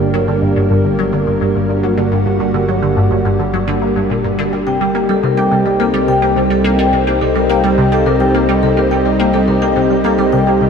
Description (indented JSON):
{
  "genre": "ambient, sequencer-driven space music",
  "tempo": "106 BPM",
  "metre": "4/4",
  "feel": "straight",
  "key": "unclear",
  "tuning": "A4 = 440 Hz",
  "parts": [
    { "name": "lush unison pad", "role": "sustained chords", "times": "0.0-10.7 s", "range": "G3 to G4", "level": "-15 LUFS", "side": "equal", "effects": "chorus" },
    { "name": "resonant blip pluck", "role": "riff", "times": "0.0-10.7 s", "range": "G2 to G4", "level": "-17 LUFS", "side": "equal", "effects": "phaser, lush chorus, tape echo" },
    { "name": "analog drone", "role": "bass", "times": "0.0-10.7 s", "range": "G1 to C2", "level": "-21 LUFS", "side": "equal", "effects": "chorus" },
    { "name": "vibraphone with medium mallets", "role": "arpeggios", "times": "4.7-10.6 s", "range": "G4 to G5", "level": "-17 LUFS", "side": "left 4 dB", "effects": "auto-pan, tape echo" }
  ],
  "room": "wet huge ambient reverb, RT60 7.7 s",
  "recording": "dreamy mix soaked in reverb",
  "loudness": "-12 LUFS",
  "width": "side -6 dB against mid",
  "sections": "0.0-10.7 A section",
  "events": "none",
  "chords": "0.0 Gm; 4.7 Cm"
}